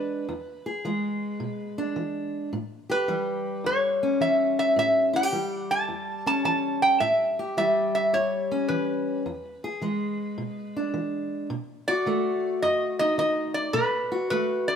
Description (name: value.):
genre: acoustic country blues, solo or duo.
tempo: 107 BPM.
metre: 4/4.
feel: swing 67% on 8ths.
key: unclear.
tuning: A4 = 440 Hz.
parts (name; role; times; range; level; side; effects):
metal-body resonator slide guitar; melody; 0.0-14.8 s; B4 to A5; -24 LUFS; right 1 dB; none.
fingerpicked steel-string acoustic guitar; accompaniment; 0.0-14.8 s; E2 to G#4; -28 LUFS; left 2 dB; none.
room: moderate stone room reverb, RT60 1.4 s.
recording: band playing live in one room.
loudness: -24 LUFS.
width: side -7 dB against mid.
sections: 0.0-14.8 A section.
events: none.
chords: 0.0 E7; 2.5 A7; 9.2 E7; 11.5 B7.